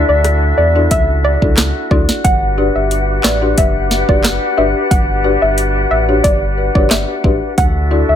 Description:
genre	dancehall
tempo	90 BPM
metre	4/4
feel	straight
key	unclear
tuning	A4 = 439 Hz
part	folk marimba with medium mallets	accompaniment	0.0-8.1 s	D4 to E5	-20 LUFS	left 3 dB	none
part	mellow small flute group	sustained chords	0.0-8.2 s	D4 to F#5	-19 LUFS	left 2 dB	sidechain pumping
part	sub bass with octave	bass	0.0-8.2 s	F#1 to E2	-17 LUFS	equal	none
part	soft round pluck	melody	0.1-8.2 s	D5 to F#5	-18 LUFS	equal	chorus, tape echo
part	afro-pop drum kit	drums	0.2-7.7 s	handclaps, hi-hat, kick drum, rim click, snare drum	-14 LUFS	equal	none
room	little or no reverb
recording	none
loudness	-11 LUFS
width	side -9 dB against mid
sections	0.0-8.2 A section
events	none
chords	0.0 Dadd9; 2.2 Gmaj7; 7.6 Dadd9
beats	0.25 0.91 1.58 | 2.25 2.91 3.58 4.25 | 4.91 5.58 6.25 6.91 | 7.58

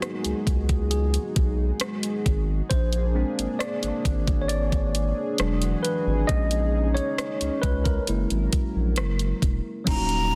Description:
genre	contemporary R&B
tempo	67 BPM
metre	4/4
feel	straight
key	G# minor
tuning	A4 = 440 Hz
part	tine electric piano	accompaniment	0.0-10.4 s	F#3 to D#5	-32 LUFS	equal	overdrive
part	chorused pulse-width pad	sustained chords	0.0-9.9 s	E3 to A#4	-34 LUFS	equal	none
part	smooth R&B drum kit	drums	0.0-10.3 s	crash cymbal, hi-hat, kick drum, rim click	-28 LUFS	equal	none
part	saturated sub bass	bass	0.3-10.4 s	D#1 to C#2	-28 LUFS	equal	none
part	breathy mellow jazz flute	melody	9.9-10.4 s	A#5	-27 LUFS	equal	none
room	light reverb, digital ambience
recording	dense, heavily limited modern master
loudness	-25 LUFS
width	mono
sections	0.0-9.9 A section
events	tine electric piano solo 0.0-9.9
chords	0.0 G#m7; 2.7 A#7; 5.4 E9; 6.3 D#7sus4/A#; 8.1 F#7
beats	0.02 0.92 1.81 | 2.71 3.60 4.50 5.39 | 6.29 7.18 8.08 8.98 | 9.87

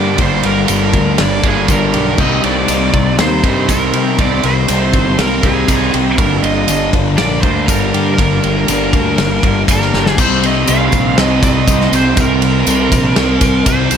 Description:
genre	rock, shoegaze and dream pop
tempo	120 BPM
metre	4/4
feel	straight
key	C minor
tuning	A4 = 438 Hz
part	bluesy overdriven lead guitar	melody	0.0-14.0 s	Ab4 to F5	-19 LUFS	right 3 dB	distortion, slapback echo
part	direct-recorded clean electric guitar	arpeggios	0.0-10.2 s	Eb3 to G4	-24 LUFS	left 9 dB	analog chorus, slapback echo
part	overdriven electric guitar	riff	0.0-14.0 s	G2 to Eb4	-18 LUFS	right 11 dB	reverse reverb
part	thick fuzz guitar	riff	0.0-14.0 s	G2 to C4	-18 LUFS	left 9 dB	distortion, lush chorus
part	fuzz fingered electric bass	bass	0.0-14.0 s	G1 to C3	-18 LUFS	equal	overdrive
part	loose indie drum kit	drums	0.2-14.0 s	crash cymbal, kick drum, ride cymbal, snare drum	-16 LUFS	equal	none
part	tambourine	percussion	0.7-14.0 s	none	-26 LUFS	left 11 dB	none
room	studio ambience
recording	none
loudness	-10 LUFS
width	side -8 dB against mid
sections	0.0-10.2 A section; 10.2-14.0 B section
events	drum fill 9.9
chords	0.0 Gm; 2.2 Cm7; 6.2 Gm; 10.2 Cm7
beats	| 0.19 0.69 1.19 1.69 | 2.19 2.69 3.19 3.69 | 4.19 4.69 5.19 5.69 | 6.19 6.69 7.18 7.68 | 8.18 8.68 9.18 9.68 | 10.18 10.68 11.17 11.67 | 12.17 12.67 13.17 13.66

